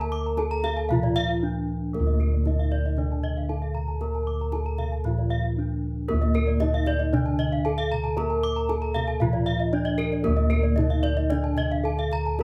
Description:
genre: Balinese gamelan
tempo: 116 BPM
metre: 4/4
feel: straight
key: D pelog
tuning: A4 = 439 Hz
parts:
  - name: gamelan-type bronze metallophone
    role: melody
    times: 0.0-12.4 s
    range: Bb3-20c to Bb4-20c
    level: -32 LUFS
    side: equal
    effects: none
  - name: gamelan-type bronze metallophone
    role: accompaniment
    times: 0.0-12.4 s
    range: D3 to Bb3-20c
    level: -37 LUFS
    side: equal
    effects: none
  - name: gamelan-type bronze metallophone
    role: arpeggios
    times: 0.0-12.4 s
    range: Bb4-20c to Bb5-20c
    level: -36 LUFS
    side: equal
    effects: none
  - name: gamelan-type bossed gongs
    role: bass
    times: 0.0-12.4 s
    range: D2 to Bb4-20c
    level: -28 LUFS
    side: equal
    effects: none
  - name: gamelan-type bronze metallophone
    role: arpeggios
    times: 0.1-12.3 s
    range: Bb4-20c to D6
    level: -34 LUFS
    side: equal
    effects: none
  - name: kendang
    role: percussion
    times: 0.4-12.4 s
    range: none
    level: -35 LUFS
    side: equal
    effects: none
room: moderate large studio reverb, RT60 0.9 s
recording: band playing live in one room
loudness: -25 LUFS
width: mono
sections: 0.0-12.4 A section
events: drum fill 5.7-6.1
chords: none

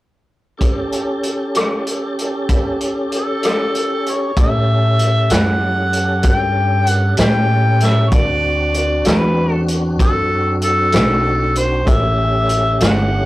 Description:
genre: slow blues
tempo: 64 BPM (dotted quarters)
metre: 12/8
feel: straight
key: A mixolydian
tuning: A4 = 442 Hz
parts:
  - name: tonewheel organ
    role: sustained chords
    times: 0.6-13.3 s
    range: A3 to A4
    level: -22 LUFS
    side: equal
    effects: slow rotary speaker, overdrive, chorus vibrato
  - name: vintage drum kit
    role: drums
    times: 0.6-13.0 s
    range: hi-hat, kick drum, rim click, snare drum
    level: -18 LUFS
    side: equal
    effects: none
  - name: mellow harmonica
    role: melody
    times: 3.2-13.3 s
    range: A4 to G5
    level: -18 LUFS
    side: left 1 dB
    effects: overdrive
  - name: upright bass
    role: bass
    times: 4.4-13.3 s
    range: G1 to A2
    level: -17 LUFS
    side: equal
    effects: none
room: moderate small room ambience, RT60 0.5 s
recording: rough rehearsal-room recording, warm saturation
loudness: -14 LUFS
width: side -17 dB against mid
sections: 0.6-4.4 A section; 4.4-13.3 B section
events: none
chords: 0.6 A7; 8.1 D7; 11.9 A7

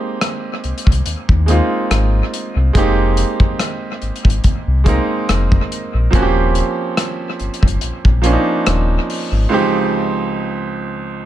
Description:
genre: contemporary R&B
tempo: 71 BPM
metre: 4/4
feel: swing 54% on 16ths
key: Ab major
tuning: A4 = 441 Hz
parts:
  - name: clear concert grand piano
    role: accompaniment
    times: 0.0-11.3 s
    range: Db2 to Bb4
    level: -19 LUFS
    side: right 3 dB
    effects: none
  - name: modern studio drum kit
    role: drums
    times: 0.2-9.3 s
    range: hi-hat, kick drum, rim click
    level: -17 LUFS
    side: equal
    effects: dub echo
  - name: sub bass with octave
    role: bass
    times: 0.6-9.5 s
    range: Eb1 to Eb2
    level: -16 LUFS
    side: equal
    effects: none
room: light reverb, studio reverb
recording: echo-heavy mix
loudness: -14 LUFS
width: side -12 dB against mid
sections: 0.0-11.3 A section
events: break 9.5-11.3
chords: 0.0 Abmaj9; 2.8 Fm11; 6.1 Eb13; 9.5 Dbmaj9#11

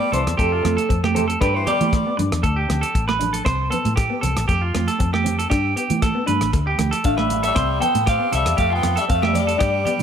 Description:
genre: highlife guitar band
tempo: 117 BPM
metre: 4/4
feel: straight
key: unclear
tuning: A4 = 440 Hz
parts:
  - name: clean electric guitar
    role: melody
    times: 0.0-2.2, 7.1-10.0 s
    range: A4 to G5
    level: -22 LUFS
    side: equal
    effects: spring reverb, analog delay
  - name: growling tenor saxophone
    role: second line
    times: 0.0-2.2, 7.1-10.0 s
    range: C3 to C4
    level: -30 LUFS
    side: left 10 dB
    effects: none
  - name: electric guitar at the edge of break-up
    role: accompaniment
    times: 0.0-10.0 s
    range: A3 to D4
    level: -29 LUFS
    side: left 7 dB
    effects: phaser
  - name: semi-hollow electric guitar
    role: arpeggios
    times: 0.0-10.0 s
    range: F4 to C5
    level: -24 LUFS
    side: right 4 dB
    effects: analog delay
  - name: vintage muted fingered electric bass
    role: bass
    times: 0.1-10.0 s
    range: A1 to E3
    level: -24 LUFS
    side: left 1 dB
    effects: none
  - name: warm soul drum kit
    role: drums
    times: 0.1-10.0 s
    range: hi-hat, kick drum, rim click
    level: -24 LUFS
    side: equal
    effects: none
  - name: congas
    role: percussion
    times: 0.1-10.0 s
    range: none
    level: -27 LUFS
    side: right 10 dB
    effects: none
room: light reverb, studio reverb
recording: none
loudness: -17 LUFS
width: side -8 dB against mid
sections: 0.0-10.0 A section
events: none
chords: 0.4 Fadd9; 1.4 G; 2.4 D5; 3.5 C5; 4.5 Fadd9; 5.5 G; 6.5 D5; 7.6 C; 8.6 Fadd9

